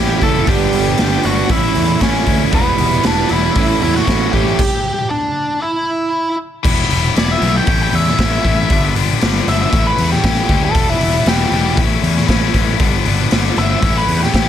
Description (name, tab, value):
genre	quiet-loud alternative rock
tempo	117 BPM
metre	4/4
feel	straight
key	unclear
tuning	A4 = 440 Hz
part	octave-fuzz lead guitar	melody	0.0-14.5 s	B3 to A5	-19 LUFS	equal	distortion
part	overdriven electric guitar	riff	0.0-4.6 s	G2 to E4	-20 LUFS	right 16 dB	none
part	scooped high-gain guitar	riff	0.0-14.5 s	G2 to E4	-19 LUFS	left 13 dB	distortion
part	fuzz picked electric bass	bass	0.0-14.5 s	E1 to E2	-18 LUFS	equal	overdrive
part	raw garage drum kit	drums	0.2-14.5 s	crash cymbal, hi-hat, kick drum, snare drum	-17 LUFS	equal	none
room	light reverb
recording	none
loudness	-12 LUFS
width	side -10 dB against mid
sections	0.0-6.6 A section; 6.6-14.5 B section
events	stop 4.6-6.6; lead electric guitar solo 6.6-14.5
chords	0.5 G; 1.5 A; 2.5 Em; 3.6 A; 4.6 G5; 5.6 N.C.; 6.6 Em; 7.7 A; 8.7 G; 9.7 A; 10.7 Em; 11.8 A; 12.8 G; 13.8 A